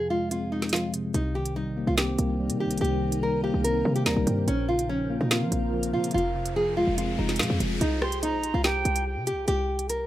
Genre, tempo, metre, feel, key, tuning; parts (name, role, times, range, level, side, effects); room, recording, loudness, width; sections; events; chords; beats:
hip hop, drill; 144 BPM; 4/4; half-time; C phrygian; A4 = 439 Hz
nylon-string guitar; melody; 0.0-10.1 s; Db4 to Bb4; -28 LUFS; equal; tape echo
mellow tine electric piano; accompaniment; 0.0-7.8 s; F2 to C4; -29 LUFS; left 1 dB; medium stereo tremolo
drill drum kit; drums; 0.3-10.0 s; hi-hat, rim click, snare drum; -28 LUFS; equal
granular cloud pad; sustained chords; 1.9-7.8 s; Eb4 to Bb5; -36 LUFS; right 1 dB; built-in reverb
short 808-style bass; bass; 1.1-10.1 s; F1 to F3; -29 LUFS; equal
riser; sound effects; 5.6-7.8 s; -39 LUFS; left 1 dB
silver concert flute; second line; 8.0-9.0 s; G5 to C6; -31 LUFS; right 3 dB; tape echo
light reverb; rough home demo mix; -24 LUFS; side -13 dB against mid
0.0-7.8 A section; 7.8-10.1 B section
break 0.0-1.1; riser 5.6-7.8
0.0 Fm; 1.1 Cm7; 4.5 Bbmadd9; 6.1 Fm; 7.8 C5
0.31 0.73 | 1.14 1.56 1.98 2.39 | 2.81 3.23 3.64 4.06 | 4.48 4.89 5.31 5.73 | 6.14 6.56 6.98 7.39 | 7.81 8.23 8.64 9.06 | 9.48 9.89